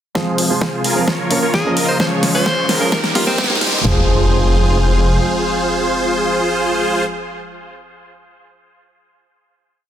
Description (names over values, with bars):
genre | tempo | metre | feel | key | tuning
EDM, festival progressive house | 130 BPM | 4/4 | straight | F minor | A4 = 440 Hz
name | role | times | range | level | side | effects
dark baby grand piano | accompaniment | 0.1-7.1 s | Eb3 to Bb4 | -22 LUFS | right 1 dB | sidechain pumping, dub echo
lush unison pad | sustained chords | 0.2-7.0 s | C3 to Ab4 | -24 LUFS | left 1 dB | chorus, sidechain pumping
dense compressed supersaw | riff | 0.2-7.0 s | Eb4 to Eb5 | -19 LUFS | right 1 dB | sidechain pumping, low-pass filter, dub echo
big-room dance drum kit | drums | 0.2-4.0 s | kick drum, snare drum, toms | -21 LUFS | equal | high-pass filter on kick, high-pass filter on snare, high-pass filter on toms
big-room dance drum kit | drums | 0.2-3.9 s | hi-hat, snare drum | -20 LUFS | equal | none
riser and impact | sound effects | 2.1-7.1 s | none | -25 LUFS | equal | none
wide detuned saw bass | bass | 0.4-5.2 s | F1 to Db2 | -18 LUFS | equal | chorus, sidechain pumping, high-pass filter
bright alto saxophone | melody | 1.5-3.6 s | C4 to C5 | -22 LUFS | equal | dub echo
room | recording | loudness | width
moderate lush hall reverb, RT60 1.9 s | dense, heavily limited modern master, high-pass filter | -14 LUFS | side -10 dB against mid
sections
0.2-3.8 build; 3.8-7.5 final chord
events
build-up 0.2-3.8; drum fill 0.2-3.8; filter sweep on supersaw synth 0.2-3.8; filter sweep on analog synth pad 0.2-3.8; filter sweep 0.2-3.8; riser 2.1-3.8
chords
0.2 Fm; 1.1 Bbm; 2.0 Db; 2.9 Eb; 3.8 Fm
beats
| 0.15 0.61 1.08 1.54 | 2.00 2.46 2.92 3.38 | 3.85 4.31 4.77 5.23 | 5.69 6.15 6.62 7.08